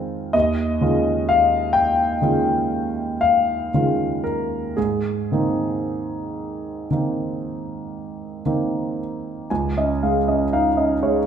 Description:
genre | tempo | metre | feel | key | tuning
classical, impressionist solo piano | 37-44 BPM (dotted quarters) | 9/8 | rubato | Ab major | A4 = 441 Hz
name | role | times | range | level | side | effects
warm concert grand piano | solo | 0.0-11.3 s | Db2 to Ab5 | -19 LUFS | equal | none
room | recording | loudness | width
moderate recital hall reverb, RT60 1.2 s | minimal, uncompressed stereo recording | -19 LUFS | side -8 dB against mid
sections
0.0-9.5 A section; 9.5-11.3 B section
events
none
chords
0.3 Eb9sus4; 4.8 Abadd9; 9.5 Dbadd9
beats
| 0.34 1.75 3.22 | 4.76 6.37 7.93 | 9.50 11.04

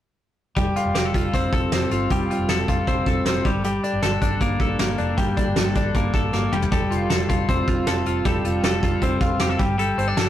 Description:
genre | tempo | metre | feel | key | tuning
jangly indie pop | 156 BPM | 4/4 | straight | F major | A4 = 441 Hz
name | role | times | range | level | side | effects
twelve-string electric guitar | arpeggios | 0.6-10.3 s | G3 to A4 | -22 LUFS | left 1 dB | none
vintage muted fingered electric bass | bass | 0.6-10.3 s | F1 to G1 | -27 LUFS | equal | none
soft brush drum kit | drums | 0.6-10.3 s | hi-hat, kick drum, snare drum, toms | -23 LUFS | right 1 dB | none
room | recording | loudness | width
moderate stone room reverb, RT60 1.1 s | rough rehearsal-room recording, tube saturation | -19 LUFS | side -11 dB against mid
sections
0.6-6.7 A section; 6.7-10.3 B section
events
drum fill 6.3-6.7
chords
0.6 Fadd9; 3.5 Gmadd9; 6.5 Fsus2; 6.7 Fadd9; 9.6 Gsus2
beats
| 0.57 0.95 1.34 1.72 | 2.11 2.49 2.88 3.26 | 3.64 4.03 4.41 4.80 | 5.18 5.57 5.95 6.33 | 6.72 7.10 7.49 7.87 | 8.25 8.64 9.02 9.40 | 9.79 10.17

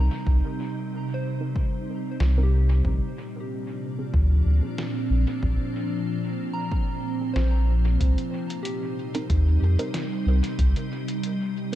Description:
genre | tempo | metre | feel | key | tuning
ambient dub | 93 BPM | 4/4 | swing 54% on 16ths | C minor | A4 = 439 Hz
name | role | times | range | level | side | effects
soft additive organ-like pad | sustained chords | 0.0-11.8 s | Bb2 to Eb4 | -28 LUFS | right 1 dB | ensemble chorus, built-in reverb
soft synth bell | arpeggios | 0.0-11.8 s | G4 to Bb5 | -39 LUFS | left 2 dB | chorus, ping-pong delay
warm sub bass | bass | 0.0-10.7 s | Bb1 to F2 | -19 LUFS | equal | tube saturation
electronic kick drum | drums | 0.3-10.7 s | none | -27 LUFS | equal | overdrive, small room ambience
filtered dub chord stab | stabs | 1.4-11.8 s | C4 to Bb4 | -37 LUFS | right 2 dB | chorus, cassette tape, dub echo
lo-fi sampler-style drum kit | drums | 2.2-11.8 s | hi-hat, snare drum | -38 LUFS | equal | small room ambience, dub echo
room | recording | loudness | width
light reverb | none | -22 LUFS | side -13 dB against mid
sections
0.0-11.8 A section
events
none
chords
0.0 Cm7; 2.8 Bb9; 8.0 Cm7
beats
| 0.27 0.91 1.56 2.20 | 2.85 3.49 4.14 4.78 | 5.43 6.07 6.72 7.36 | 8.01 8.65 9.30 9.94 | 10.59 11.23

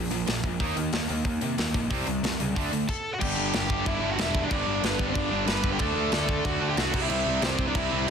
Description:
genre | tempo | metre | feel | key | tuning
punk rock | 185 BPM | 4/4 | straight | unclear | A4 = 440 Hz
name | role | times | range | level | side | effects
distorted electric guitar | riff | 0.0-8.1 s | G2 to Eb4 | -30 LUFS | right 16 dB | overdrive
tight distorted guitar | riff | 0.0-8.1 s | G2 to Eb4 | -32 LUFS | left 13 dB | distortion
fuzz picked electric bass | bass | 0.0-8.1 s | E1 to C3 | -32 LUFS | equal | overdrive
tight metal drum kit | drums | 0.1-8.1 s | crash cymbal, hi-hat, kick drum, snare drum | -29 LUFS | equal | soft clipping on kick
crunchy overdriven guitar | melody | 2.9-8.1 s | B3 to B5 | -30 LUFS | left 1 dB | none
room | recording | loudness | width
light reverb | dense, heavily limited modern master | -24 LUFS | side -7 dB against mid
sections
0.0-3.2 A section; 3.2-8.1 B section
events
stop 2.9-3.2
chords
0.0 Bb5; 0.6 Eb5; 1.9 C5; 2.6 D5; 3.2 G; 5.8 D; 6.9 C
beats
0.27 | 0.60 0.93 1.25 1.58 | 1.91 2.23 2.56 2.88 | 3.21 3.53 3.86 4.18 | 4.51 4.83 5.16 5.48 | 5.80 6.13 6.45 6.77 | 7.10 7.42 7.75 8.07

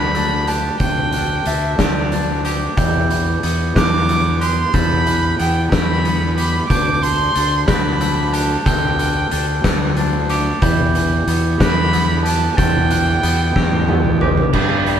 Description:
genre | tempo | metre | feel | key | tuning
post-rock | 61 BPM (dotted quarters) | 6/8 | straight | unclear | A4 = 439 Hz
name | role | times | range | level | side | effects
dark violin | melody | 0.0-14.2 s | D5 to D6 | -22 LUFS | right 2 dB | none
pedal steel guitar | sustained chords | 0.0-15.0 s | G4 to B5 | -31 LUFS | equal | none
glockenspiel with hard plastic mallets | arpeggios | 0.0-15.0 s | D6 to G6 | -24 LUFS | right 5 dB | none
twangy electric guitar | arpeggios | 0.0-15.0 s | E2 to G4 | -25 LUFS | left 2 dB | none
fuzz fingered electric bass | bass | 0.0-15.0 s | D2 to G2 | -19 LUFS | equal | overdrive
oversized low-tuned drum kit | drums | 0.1-15.0 s | crash cymbal, hi-hat, kick drum, snare drum, toms | -19 LUFS | equal | none
tight distorted guitar | riff | 14.5-15.0 s | G2 to D4 | -20 LUFS | right 5 dB | distortion
room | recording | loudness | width
moderate stone room reverb, RT60 1.3 s | band playing live in one room | -14 LUFS | side -9 dB against mid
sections
0.0-14.5 A section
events
drum fill 13.6-14.5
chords
0.0 Dsus4; 2.8 Em; 6.7 Dsus4; 10.6 Em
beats
| 0.80 1.79 | 2.77 3.76 | 4.74 5.72 | 6.71 7.69 | 8.67 9.65 | 10.63 11.61 | 12.58 13.56 | 14.54

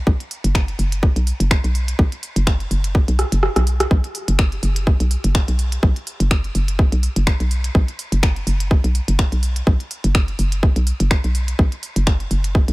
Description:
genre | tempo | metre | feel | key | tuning
minimal techno | 125 BPM | 4/4 | swing 55% on 16ths | unclear | A4 = 440 Hz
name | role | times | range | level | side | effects
hollow knocking FM bass | bass | 0.1-12.7 s | F#1 to B1 | -19 LUFS | equal | sidechain pumping
electronic kick drum | drums | 0.1-12.7 s | none | -16 LUFS | equal | overdrive
minimal click drum kit | drums | 0.2-12.7 s | finger snaps, hi-hat, rim click | -26 LUFS | equal | overdrive
room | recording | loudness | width
little or no reverb | none | -16 LUFS | side -21 dB against mid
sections
0.0-12.7 A section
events
drum fill 3.2-3.9; kick drops out 3.4-3.9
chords
none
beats
| 0.07 0.55 1.03 1.51 | 1.99 2.47 2.95 3.43 | 3.91 4.39 4.87 5.35 | 5.83 6.31 6.79 7.27 | 7.75 8.23 8.71 9.19 | 9.67 10.15 10.63 11.11 | 11.59 12.07 12.55

